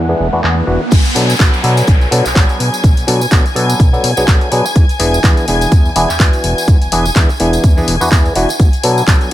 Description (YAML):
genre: filtered disco house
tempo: 125 BPM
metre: 4/4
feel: swing 56% on 16ths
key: B dorian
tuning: A4 = 440 Hz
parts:
  - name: clav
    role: accompaniment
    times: 0.0-9.3 s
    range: E3 to A4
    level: -16 LUFS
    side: equal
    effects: phaser, sidechain pumping, low-pass filter
  - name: dark studio string section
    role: sustained chords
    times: 0.0-9.3 s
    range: F#5 to G#6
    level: -22 LUFS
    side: left 2 dB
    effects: sidechain pumping, low-pass filter
  - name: fat analog bass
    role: bass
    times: 0.0-9.2 s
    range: E1 to B2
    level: -17 LUFS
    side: equal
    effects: tube saturation, sidechain pumping, low-pass filter
  - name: riser and downlifter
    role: sound effects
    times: 0.0-4.8 s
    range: none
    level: -22 LUFS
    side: right 1 dB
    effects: none
  - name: tambourine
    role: percussion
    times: 0.1-9.3 s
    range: none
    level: -26 LUFS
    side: equal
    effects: sidechain pumping on perc, low-pass filter on perc
  - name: punchy analog drum machine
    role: drums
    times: 0.4-9.3 s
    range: crash cymbal, handclaps, hi-hat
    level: -19 LUFS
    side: left 1 dB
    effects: low-pass filter on snare, sidechain pumping on hats, low-pass filter on hats, sidechain pumping on cymbals, low-pass filter on cymbals, low-pass filter on room
  - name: electronic kick drum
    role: drums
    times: 0.9-9.2 s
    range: none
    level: -10 LUFS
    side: equal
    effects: none
room: light reverb, digital ambience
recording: none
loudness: -9 LUFS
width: side -14 dB against mid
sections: 0.9-9.3 A section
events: riser 0.0-0.9; drop 0.9-9.3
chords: 0.0 E7; 0.9 Bm7; 4.8 E7; 8.6 Bm7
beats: 0.44 | 0.92 1.40 1.88 2.36 | 2.84 3.32 3.80 4.28 | 4.76 5.24 5.72 6.20 | 6.68 7.16 7.64 8.12 | 8.60 9.08